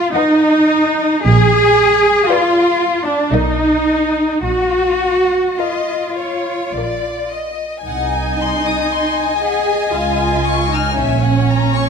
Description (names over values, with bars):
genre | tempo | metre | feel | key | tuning
classical, slow romantic movement for string orchestra | 51-60 BPM | 3/4 | rubato | unclear | A4 = 438 Hz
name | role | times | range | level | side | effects
clear chamber viola section | accompaniment | 0.0-11.9 s | Db4 to Ab4 | -19 LUFS | right 1 dB | none
warm chamber cello section | bass | 0.0-11.9 s | Db4 to Ab4 | -16 LUFS | equal | none
warm chamber violin section | melody | 0.1-11.9 s | Db5 to Ab5 | -23 LUFS | left 4 dB | none
warm chamber violin section | second line | 0.2-11.9 s | A#4 to F6 | -21 LUFS | left 6 dB | none
rich studio double bass section | bass | 1.2-11.8 s | Bb1 to Db2 | -18 LUFS | right 4 dB | none
room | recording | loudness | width
moderate scoring stage reverb, RT60 1.8 s | none | -13 LUFS | side -6 dB against mid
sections
0.0-11.9 A section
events
none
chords
0.0 Abm7 (rootless); 1.3 Bb7b9; 3.3 Bmaj7; 4.4 Bbsus4; 6.7 Bb; 7.8 Ab7/C; 9.9 Db; 11.0 Gb7/Bb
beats
0.13 | 1.26 2.27 3.32 | 4.44 5.59 6.73 | 7.85 8.89 9.92 | 10.96